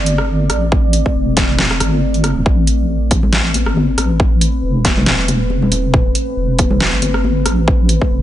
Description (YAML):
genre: deep dubstep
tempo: 138 BPM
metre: 4/4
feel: swing 56% on 16ths, half-time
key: A minor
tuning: A4 = 445 Hz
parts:
  - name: deep dark ambient pad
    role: sustained chords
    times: 0.0-8.2 s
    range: A3 to D5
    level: -21 LUFS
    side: equal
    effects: chorus, built-in reverb
  - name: deep soft wobble bass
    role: bass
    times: 0.0-8.2 s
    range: E1 to A1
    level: -17 LUFS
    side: equal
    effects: chorus
  - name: dubstep drum kit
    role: drums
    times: 0.1-8.0 s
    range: hi-hat, rim click, snare drum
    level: -18 LUFS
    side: equal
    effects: overdrive
  - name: electronic kick drum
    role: drums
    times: 0.7-8.1 s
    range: none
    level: -15 LUFS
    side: equal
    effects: overdrive
  - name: congas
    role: percussion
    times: 3.1-7.3 s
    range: none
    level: -23 LUFS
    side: left 2 dB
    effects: dub echo
room: light reverb, digital ambience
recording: nothing above 10.5 kHz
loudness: -12 LUFS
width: side -12 dB against mid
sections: 0.0-8.2 A section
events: none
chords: 0.0 Amadd9